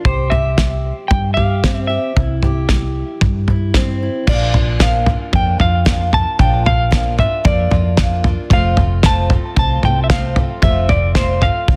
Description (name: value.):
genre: indie folk with a building arrangement.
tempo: 113 BPM.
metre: 4/4.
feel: straight.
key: unclear.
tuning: A4 = 440 Hz.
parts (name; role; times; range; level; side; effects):
fingerpicked steel-string acoustic guitar; accompaniment; 0.0-4.3 s; G2 to G4; -27 LUFS; equal; none.
semi-hollow electric guitar; melody; 0.1-11.8 s; C5 to A5; -22 LUFS; equal; harmonic tremolo, tape echo.
hollow-body short-scale fingered electric bass; bass; 0.1-11.8 s; F1 to G2; -20 LUFS; equal; none.
cloth-damped thuddy drum kit; drums; 0.1-11.8 s; crash cymbal, kick drum, snare drum, toms; -18 LUFS; equal; none.
picked old ladder-braced acoustic guitar; accompaniment; 4.3-11.8 s; F2 to F4; -26 LUFS; equal; none.
room: light reverb, studio reverb.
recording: dense, heavily limited modern master.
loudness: -15 LUFS.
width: mono.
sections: 0.0-4.3 A section; 4.3-11.8 B section.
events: none.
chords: 0.0 C; 4.3 Bb; 8.5 F.